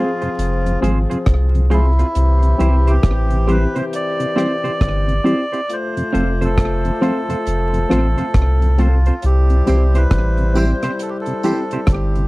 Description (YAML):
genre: roots reggae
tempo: 68 BPM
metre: 4/4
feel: swing 62% on 16ths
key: C major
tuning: A4 = 441 Hz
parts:
  - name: melodica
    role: melody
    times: 0.0-12.3 s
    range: E4 to D5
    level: -24 LUFS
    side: right 1 dB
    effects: dub echo
  - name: warm horn section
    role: second line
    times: 0.0-12.3 s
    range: E3 to C5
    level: -25 LUFS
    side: left 3 dB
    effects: dub echo
  - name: mellow tonewheel organ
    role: accompaniment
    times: 0.0-12.2 s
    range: F2 to C4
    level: -22 LUFS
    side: equal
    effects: chorus vibrato, slow rotary speaker
  - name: semi-hollow electric guitar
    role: accompaniment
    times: 0.0-11.8 s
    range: C4 to C5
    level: -24 LUFS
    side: right 3 dB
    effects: dub echo
  - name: barky reed electric piano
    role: stabs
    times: 0.0-11.6 s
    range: C4 to A4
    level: -22 LUFS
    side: left 2 dB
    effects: overdrive
  - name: deep reggae drum kit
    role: drums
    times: 0.2-12.3 s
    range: hi-hat, kick drum, rim click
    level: -17 LUFS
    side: equal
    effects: slapback echo
  - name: warm sub bass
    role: bass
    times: 0.4-12.3 s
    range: F1 to C2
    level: -15 LUFS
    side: equal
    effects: none
  - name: tambourine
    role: percussion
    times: 9.7-11.7 s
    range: none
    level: -38 LUFS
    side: right 3 dB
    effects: none
room: little or no reverb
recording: dry, close 1970s-style studio recording, vinyl crackle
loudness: -14 LUFS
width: side -21 dB against mid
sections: 0.0-12.3 A section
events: none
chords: 0.0 Fm; 2.2 C; 5.7 F; 9.2 C